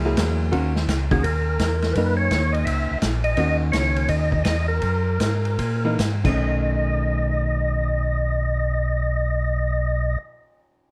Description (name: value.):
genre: soul jazz organ trio.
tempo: 143-169 BPM.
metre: 4/4.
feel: swing 64% on 8ths.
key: unclear.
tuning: A4 = 435 Hz.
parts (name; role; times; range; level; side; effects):
archtop guitar, miked and amplified; accompaniment; 0.0-10.2 s; D#3 to G#4; -29 LUFS; equal; none.
mellow tonewheel organ; bass; 0.0-10.2 s; A#1 to A#2; -25 LUFS; equal; overdrive, chorus vibrato, slow rotary speaker.
vintage drum kit; drums; 0.2-6.3 s; crash cymbal, hi-hat, kick drum, ride cymbal, snare drum; -29 LUFS; equal; none.
percussive tonewheel organ; melody; 1.1-10.2 s; G#4 to E5; -28 LUFS; equal; slow rotary speaker, overdrive, chorus vibrato, plate reverb.
room: light reverb.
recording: none.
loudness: -22 LUFS.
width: mono.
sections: 0.5-6.4 A section; 6.4-9.7 B section.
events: slowing down 3.4-6.4.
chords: 0.0 F#9; 0.5 D#m7; 1.9 F#6; 3.4 D#m7; 4.8 F#add9; 6.2 B9.